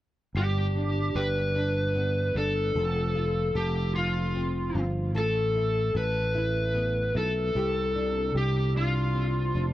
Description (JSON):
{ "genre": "pop", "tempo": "50 BPM (dotted quarters)", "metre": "6/8", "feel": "straight", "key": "G mixolydian", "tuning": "A4 = 440 Hz", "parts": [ { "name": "sustaining fretless electric bass", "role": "bass", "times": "0.3-9.7 s", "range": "F1 to C2", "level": "-29 LUFS", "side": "equal", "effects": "none" }, { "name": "lead guitar through a small cranked amp", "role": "melody", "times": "0.4-9.6 s", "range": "F4 to B4", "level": "-28 LUFS", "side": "left 1 dB", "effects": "overdrive, tape echo" }, { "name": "nylon-string guitar", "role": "accompaniment", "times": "0.4-9.7 s", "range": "G2 to A4", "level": "-31 LUFS", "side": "equal", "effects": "double-tracked left and right" } ], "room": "light reverb, small room ambience", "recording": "worn, warbling old tape, cassette tape, warbly pitch drift", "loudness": "-25 LUFS", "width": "side -14 dB against mid", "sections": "0.3-9.7 A section", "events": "none", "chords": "0.3 G; 2.8 F; 5.2 Asus2; 7.6 Csus2", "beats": "| 0.35 1.55 | 2.75 3.95 | 5.15 6.35 | 7.55 8.75" }